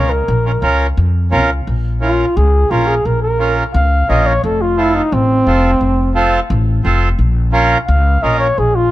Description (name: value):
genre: latin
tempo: 174 BPM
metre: 4/4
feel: straight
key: Bb harmonic minor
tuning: A4 = 439 Hz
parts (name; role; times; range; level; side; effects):
- trumpet with bucket mute; melody; 0.0-8.9 s; C4 to F5; -16 LUFS; equal; none
- accordion; accompaniment; 0.0-8.5 s; C4 to Bb4; -18 LUFS; right 2 dB; none
- upright bass; bass; 0.0-8.9 s; F1 to F2; -15 LUFS; equal; none
room: light reverb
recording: dark, warm production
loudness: -12 LUFS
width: side -15 dB against mid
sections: 0.0-1.7 A section; 1.7-8.9 B section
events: muted trumpet solo 1.7-8.9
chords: 0.0 Bbm; 4.4 F; 7.2 Bbm